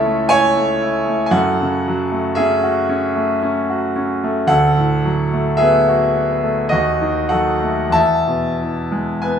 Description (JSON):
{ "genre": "classical, romantic nocturne for solo piano", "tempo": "46-59 BPM", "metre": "3/4", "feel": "rubato", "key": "unclear", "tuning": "A4 = 440 Hz", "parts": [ { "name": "bright concert grand piano", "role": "solo", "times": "0.0-9.4 s", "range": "C#2 to A5", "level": "-15 LUFS", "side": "equal", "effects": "none" } ], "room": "wet recital hall reverb, RT60 1.4 s", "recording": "minimal, uncompressed stereo recording", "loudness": "-15 LUFS", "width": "side -8 dB against mid", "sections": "0.0-9.4 A section", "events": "none", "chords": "0.0 A/C#; 1.3 F#m; 4.5 Bm7/D; 6.7 D#dim; 8.0 E" }